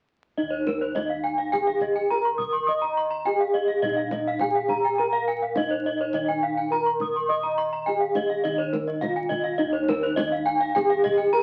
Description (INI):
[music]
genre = Balinese gamelan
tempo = 104 BPM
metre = 4/4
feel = straight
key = Eb slendro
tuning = A4 = 437 Hz
[part]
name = gamelan-type bronze metallophone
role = melody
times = 0.4-11.4 s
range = Eb4 to Eb5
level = -28 LUFS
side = equal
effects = none
[part]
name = gamelan-type bronze metallophone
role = arpeggios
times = 0.4-11.4 s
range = Db5-45c to Eb6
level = -28 LUFS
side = equal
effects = none
[part]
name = gamelan-type bossed gongs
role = bass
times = 0.4-11.4 s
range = Eb2 to Eb5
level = -39 LUFS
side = equal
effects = none
[part]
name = gamelan-type bronze metallophone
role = arpeggios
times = 0.7-11.3 s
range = Bb4+25c to Db6-45c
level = -33 LUFS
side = equal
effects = none
[part]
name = kendang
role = percussion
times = 0.7-11.2 s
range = none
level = -36 LUFS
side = equal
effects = none
[sound]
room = wet club reverb, RT60 0.8 s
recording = very old 78 rpm record, vinyl crackle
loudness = -25 LUFS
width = mono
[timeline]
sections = 0.4-11.4 A section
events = none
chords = none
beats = | 0.37 0.95 1.52 2.10 | 2.68 3.25 3.83 4.41 | 4.98 5.56 6.14 6.71 | 7.29 7.87 8.45 9.02 | 9.60 10.18 10.75 11.33